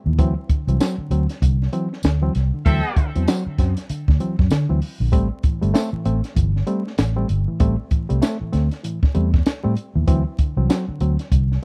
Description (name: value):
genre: funk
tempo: 97 BPM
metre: 4/4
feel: swing 60% on 16ths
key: unclear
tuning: A4 = 441 Hz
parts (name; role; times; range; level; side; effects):
- bright reed electric piano; stabs; 0.1-11.5 s; A2 to C4; -27 LUFS; equal; overdrive, spring reverb
- vintage muted fingered electric bass; bass; 0.1-11.6 s; G1 to D3; -22 LUFS; equal; none
- compact cocktail drum kit; drums; 0.2-11.6 s; hi-hat, kick drum, snare drum; -22 LUFS; equal; none
- tambourine; percussion; 0.8-10.9 s; none; -40 LUFS; equal; none
- clear horn section; second line; 2.7-3.1 s; C4 to E5; -30 LUFS; equal; tape echo
room: little or no reverb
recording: dry, close 1970s-style studio recording, vinyl crackle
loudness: -20 LUFS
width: mono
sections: 0.0-11.6 A section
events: band accent 2.7-5.1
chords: 0.2 D9; 5.1 Am7; 10.1 D9